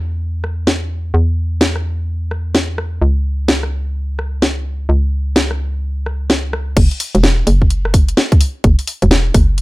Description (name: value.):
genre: UK garage, two-step garage.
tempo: 128 BPM.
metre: 4/4.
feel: swing 63% on 16ths.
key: unclear.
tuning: A4 = 440 Hz.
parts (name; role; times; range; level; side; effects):
hollow knocking FM bass; bass; 0.0-9.6 s; E1 to E2; -16 LUFS; equal; tube saturation, sidechain pumping.
garage drum kit; drums; 0.4-9.6 s; crash cymbal, hi-hat, rim click, snare drum; -16 LUFS; equal; none.
electronic kick drum; drums; 6.8-9.5 s; none; -12 LUFS; equal; none.
room: digital ambience.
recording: none.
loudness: -14 LUFS.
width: side -20 dB against mid.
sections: 0.0-6.8 A section; 6.8-9.6 B section.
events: drop 6.8-9.6.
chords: none.